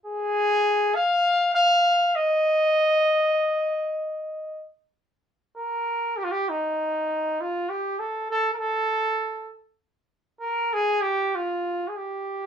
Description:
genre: mexican folk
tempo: free time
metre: none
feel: none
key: unclear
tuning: A4 = 440 Hz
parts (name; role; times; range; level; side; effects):
- mellow trumpet; solo; 0.1-12.5 s; Eb4 to F5; -22 LUFS; equal; none
room: wet studio ambience, RT60 0.5 s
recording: band playing live in one room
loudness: -21 LUFS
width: side -8 dB against mid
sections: 0.0-5.0 A section; 5.0-12.5 B section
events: none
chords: none

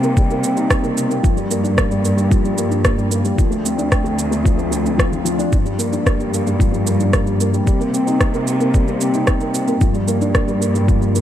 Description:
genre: piano and strings electronica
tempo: 112 BPM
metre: 4/4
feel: straight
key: G minor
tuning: A4 = 440 Hz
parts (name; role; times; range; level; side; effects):
- felt-muted upright piano; riff; 0.0-11.2 s; F3 to Eb4; -19 LUFS; left 1 dB; digital delay
- dark symphonic cello section; bass; 0.0-11.2 s; D2 to C3; -21 LUFS; equal; sidechain pumping
- electronic shaker and rim click; drums; 0.0-11.2 s; none; -24 LUFS; right 1 dB; none
- electronic kick drum; drums; 0.2-11.0 s; none; -17 LUFS; equal; none
room: small room ambience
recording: none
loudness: -15 LUFS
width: side -11 dB against mid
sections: 0.0-11.2 A section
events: none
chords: 0.0 Cm7; 1.2 Gm7; 3.4 Dm7; 5.5 Gm7; 7.7 Cm7; 9.8 Gm7

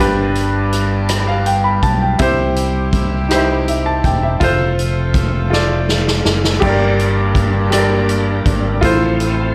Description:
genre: slow gospel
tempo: 54 BPM (dotted quarters)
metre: 6/8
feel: straight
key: F major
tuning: A4 = 440 Hz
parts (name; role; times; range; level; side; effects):
- clear baby grand piano; accompaniment; 0.0-9.5 s; G2 to B5; -19 LUFS; equal; none
- rich chamber string section; sustained chords; 0.0-9.5 s; F3 to A4; -28 LUFS; equal; none
- fingered electric bass; bass; 0.0-9.5 s; E1 to C2; -21 LUFS; equal; none
- swinging big-band drum kit; drums; 0.4-9.4 s; crash cymbal, hi-hat, kick drum, rim click, snare drum; -22 LUFS; equal; none
- bright tonewheel organ; sustained chords; 6.6-9.5 s; F3 to D4; -26 LUFS; equal; slow rotary speaker, chorus vibrato
room: moderate large studio reverb, RT60 0.9 s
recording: none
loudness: -15 LUFS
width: mono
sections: 0.0-9.5 A section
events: drum fill 5.5-6.6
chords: 0.0 G; 2.2 C; 4.4 F; 6.6 Gm; 8.8 F/A

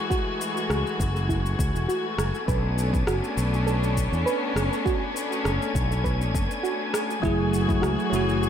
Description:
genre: sunset chillout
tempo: 101 BPM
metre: 4/4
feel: straight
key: unclear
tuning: A4 = 442 Hz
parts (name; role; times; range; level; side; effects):
- rich chamber string section; sustained chords; 0.0-8.5 s; E3 to G#4; -29 LUFS; left 2 dB; none
- wind-like tuned noise texture; texture; 0.0-8.5 s; G#5 to G#6; -35 LUFS; equal; built-in reverb
- soft round pluck; arpeggios; 0.1-8.5 s; E4 to B4; -32 LUFS; right 4 dB; chorus, diffuse ambient delay
- electronic kick drum; drums; 0.1-7.8 s; none; -28 LUFS; equal; overdrive, small room ambience
- electronic shaker and rim click; drums; 0.1-8.5 s; none; -34 LUFS; right 1 dB; overdrive, small room ambience
- fretless electric bass; bass; 0.7-8.5 s; E1 to E2; -26 LUFS; equal; none
- bell-like tine electric piano; accompaniment; 7.2-8.5 s; F#3 to G#4; -25 LUFS; right 1 dB; auto-pan, diffuse ambient delay
room: moderate plate reverb, RT60 1.5 s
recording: dreamy mix soaked in reverb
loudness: -22 LUFS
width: side -9 dB against mid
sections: 0.0-8.5 A section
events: none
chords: 0.0 F#m9; 2.5 Bm9; 7.2 F#m9

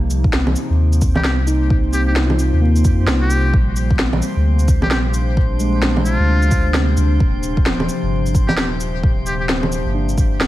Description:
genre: future garage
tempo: 131 BPM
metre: 4/4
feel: swing 61% on 16ths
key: C minor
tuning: A4 = 441 Hz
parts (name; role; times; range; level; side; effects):
- warbly tape-like pad; sustained chords; 0.0-10.5 s; C3 to Eb4; -26 LUFS; right 2 dB; chorus, built-in reverb, phaser, sidechain pumping
- warm sub bass; bass; 0.0-10.5 s; Eb1 to F2; -17 LUFS; equal; tube saturation, sidechain pumping
- drifting glass-harmonics texture; texture; 0.8-10.5 s; C4 to C5; -30 LUFS; left 2 dB; chorus, built-in reverb
- electronic shaker, snare drum and bongos; drums; 0.1-10.5 s; none; -21 LUFS; right 1 dB; none
- electronic kick drum; drums; 0.2-10.3 s; none; -16 LUFS; equal; none
- mellow tine electric piano; accompaniment; 0.3-10.5 s; F3 to F4; -25 LUFS; left 1 dB; medium stereo tremolo, vintage 12-bit sampler grit, sidechain pumping, low-pass filter, digital delay
- trumpet with metal mute; melody; 1.2-9.5 s; F4 to G4; -26 LUFS; left 1 dB; ping-pong delay
room: digital ambience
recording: vinyl crackle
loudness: -14 LUFS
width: side -15 dB against mid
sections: 0.0-10.5 A section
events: none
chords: 0.0 Cm7; 3.5 Bb7; 7.2 Ebmaj9

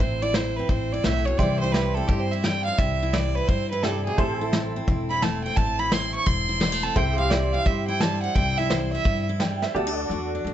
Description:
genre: honky-tonk and classic country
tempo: 172 BPM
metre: 4/4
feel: swing 64% on 8ths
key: C major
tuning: A4 = 440 Hz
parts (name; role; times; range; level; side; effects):
- clear fiddle; second line; 0.0-9.3 s; G4 to Db6; -26 LUFS; right 3 dB; none
- honky-tonk upright piano; accompaniment; 0.0-10.5 s; E4 to G5; -33 LUFS; right 4 dB; none
- picked steel-string acoustic guitar; accompaniment; 0.0-10.5 s; E2 to F#4; -30 LUFS; left 3 dB; none
- upright bass; bass; 0.0-10.5 s; E1 to G2; -28 LUFS; left 1 dB; none
- vintage brush drum kit; drums; 0.3-9.7 s; hi-hat, kick drum, snare drum; -26 LUFS; equal; none
- pedal steel guitar; sustained chords; 4.2-10.5 s; F#4 to E5; -33 LUFS; right 1 dB; none
room: light reverb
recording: nothing above 7.9 kHz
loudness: -21 LUFS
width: side -11 dB against mid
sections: 0.0-9.7 A section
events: fiddle solo 0.0-9.7; honky-tonk piano fill 9.2-9.7; drum fill 9.6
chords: 0.0 Am; 1.4 C; 4.2 Am; 7.0 C; 9.7 D

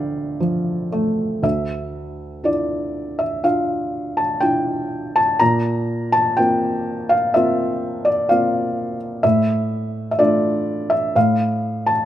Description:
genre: classical, lyrical solo piano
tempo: 57-64 BPM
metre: 4/4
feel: rubato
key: D minor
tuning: A4 = 440 Hz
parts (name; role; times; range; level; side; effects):
- felt-muted upright piano; solo; 0.0-12.1 s; D2 to Bb5; -18 LUFS; equal; none
room: light reverb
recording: close, detailed microphones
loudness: -17 LUFS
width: side -12 dB against mid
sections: 0.0-1.4 A section; 1.4-12.1 B section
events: none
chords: 0.0 Dm; 5.4 Bbsus2; 9.2 Dm/A; 11.2 N.C.

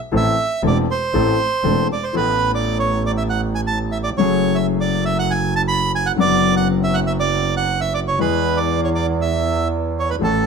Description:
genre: tango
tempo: 119 BPM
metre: 4/4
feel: rubato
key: A major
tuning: A4 = 440 Hz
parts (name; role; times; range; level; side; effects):
- clear concert grand piano; accompaniment; 0.1-10.5 s; E1 to A4; -21 LUFS; left 6 dB; none
- clear double bass; bass; 0.1-10.5 s; E1 to E2; -22 LUFS; right 3 dB; none
- bandoneon; melody; 0.2-10.5 s; A4 to B5; -20 LUFS; right 5 dB; plate reverb
room: moderate studio reverb, RT60 0.7 s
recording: close, detailed microphones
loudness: -16 LUFS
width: side -6 dB against mid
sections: 0.0-2.2 A section; 2.2-10.5 B section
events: none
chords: 0.1 Am; 2.2 Asus2; 4.2 F#madd9; 6.2 Bm/F#; 8.2 E

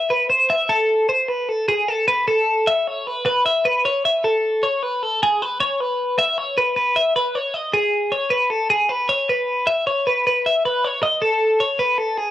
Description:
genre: rock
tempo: 309 BPM (eighths)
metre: 9/8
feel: straight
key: unclear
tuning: A4 = 440 Hz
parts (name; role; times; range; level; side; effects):
- twelve-string electric guitar; solo; 0.0-12.3 s; G#4 to E5; -17 LUFS; equal; cassette tape
room: little or no reverb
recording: home recording on cassette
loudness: -17 LUFS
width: side -13 dB against mid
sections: 0.0-12.3 A section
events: none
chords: none

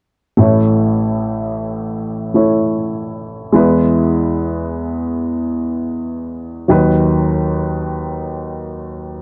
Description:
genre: pop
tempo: free time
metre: none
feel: none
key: unclear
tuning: A4 = 440 Hz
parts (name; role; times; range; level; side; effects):
- warm upright piano; accompaniment; 0.4-9.2 s; A1 to C#5; -17 LUFS; equal; none
room: moderate studio reverb, RT60 0.5 s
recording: cassette tape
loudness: -17 LUFS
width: mono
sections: 0.4-9.2 A section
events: none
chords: 0.4 A; 3.5 E; 6.7 B/D#

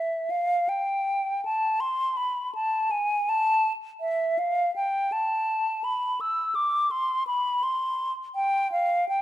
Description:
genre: classical, baroque-style fantasia for unaccompanied flute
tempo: 55 BPM (dotted quarters)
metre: 6/8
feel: rubato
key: A minor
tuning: A4 = 440 Hz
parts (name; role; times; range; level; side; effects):
- hollow concert flute; solo; 0.0-9.2 s; E5 to E6; -24 LUFS; equal; none
room: moderate concert hall reverb, RT60 1.9 s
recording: close, detailed microphones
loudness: -24 LUFS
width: side -13 dB against mid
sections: 0.0-9.2 A section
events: none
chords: none

